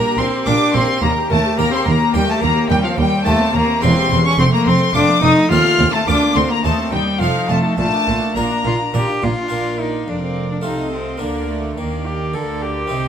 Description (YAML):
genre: classical, baroque-style concerto movement with solo episodes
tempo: 106 BPM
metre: 3/4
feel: straight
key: Bb major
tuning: A4 = 441 Hz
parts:
  - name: rich cello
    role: melody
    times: 0.0-13.1 s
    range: F3 to A4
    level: -19 LUFS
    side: left 2 dB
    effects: none
  - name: warm chamber violin section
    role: melody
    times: 0.0-13.1 s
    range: Eb5 to F6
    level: -22 LUFS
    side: left 4 dB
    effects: none
  - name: rich chamber violin section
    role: second line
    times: 0.0-13.1 s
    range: D5 to F6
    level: -24 LUFS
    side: equal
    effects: none
  - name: dark chamber viola section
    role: accompaniment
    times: 0.0-13.1 s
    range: E3 to C5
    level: -26 LUFS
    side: right 1 dB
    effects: none
  - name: harpsichord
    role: accompaniment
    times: 0.0-13.1 s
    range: D2 to D5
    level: -24 LUFS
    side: right 1 dB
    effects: none
  - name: rich chamber cello section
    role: bass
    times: 0.2-13.1 s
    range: D2 to Eb3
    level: -23 LUFS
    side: right 2 dB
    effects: none
  - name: warm studio double bass section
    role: bass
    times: 0.2-13.1 s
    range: E1 to Eb2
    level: -23 LUFS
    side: right 3 dB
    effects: none
room: light reverb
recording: close, detailed microphones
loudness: -14 LUFS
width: side -8 dB against mid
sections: 0.0-9.5 A section; 9.5-13.1 B section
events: none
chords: 0.0 Gm/Bb; 1.0 Eb; 2.7 Cm7/Eb; 3.8 Edim7; 4.4 F; 5.5 F7/Eb; 6.1 Bb/D; 6.6 Cm/Eb; 7.2 F7; 7.8 Bb; 10.6 F7/C; 11.2 Bb/D